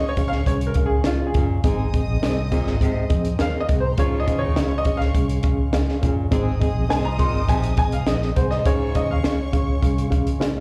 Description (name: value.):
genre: uptempo 1960s-style soul.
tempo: 103 BPM.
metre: 4/4.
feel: straight.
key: Db major.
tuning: A4 = 439 Hz.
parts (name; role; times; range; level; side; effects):
clear baby grand piano; melody; 0.0-9.6 s; F4 to C6; -29 LUFS; equal; slapback echo.
warm symphonic string section; second line; 0.0-10.6 s; Db4 to Eb6; -39 LUFS; equal; slapback echo.
mellow reed electric piano; accompaniment; 0.0-10.6 s; Ab2 to F5; -28 LUFS; equal; fast tremolo.
overdriven tonewheel organ; sustained chords; 0.0-10.6 s; Ab3 to F4; -41 LUFS; equal; none.
vintage muted fingered electric bass; bass; 0.0-10.6 s; Gb1 to Ab2; -26 LUFS; equal; none.
compact cocktail drum kit; drums; 0.2-10.6 s; hi-hat, kick drum, snare drum; -25 LUFS; equal; none.
clear baritone saxophone; riff; 1.3-9.1 s; Ab2 to C3; -33 LUFS; equal; slapback echo.
warm horn section; second line; 4.0-7.7 s; Eb3 to Ab4; -36 LUFS; equal; slapback echo.
room: little or no reverb.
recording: live gig heard through the venue's PA, club reverb.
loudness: -21 LUFS.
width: mono.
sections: 0.0-10.6 A section.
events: grand piano solo 0.0-10.6.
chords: 0.0 Db; 1.6 Ab; 4.0 Db; 6.3 Ab; 8.7 Db.